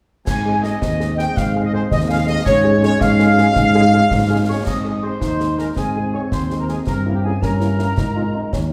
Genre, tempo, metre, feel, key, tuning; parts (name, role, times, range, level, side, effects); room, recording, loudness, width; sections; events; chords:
military-style march for wind band; 109 BPM (dotted quarters); 6/8; straight; Ab major; A4 = 440 Hz
mellow trumpet section; melody; 0.3-8.7 s; G4 to Ab5; -26 LUFS; equal
bright large flute ensemble; second line; 0.3-8.7 s; C5 to Eb6; -26 LUFS; equal
warm woodwind section; second line; 0.3-8.7 s; G4 to Ab5; -29 LUFS; equal
warm trombone section; sustained chords; 0.3-8.7 s; Ab3 to F4; -28 LUFS; equal
dark tuba; bass; 0.3-8.7 s; Eb2 to Ab2; -21 LUFS; equal
concert snare drum, clash cymbals and concert bass drum; drums; 0.3-8.7 s; -27 LUFS; equal
mellow French horn section; accompaniment; 0.5-8.7 s; Ab3 to Ab4; -29 LUFS; equal
wet large studio reverb, RT60 1.2 s; heard from further back in the room; -17 LUFS; mono
0.3-4.7 A section; 4.7-8.7 B section
0.3 Ab; 2.5 Db/Ab; 4.7 Ab; 6.9 Gdim7; 8.0 Ab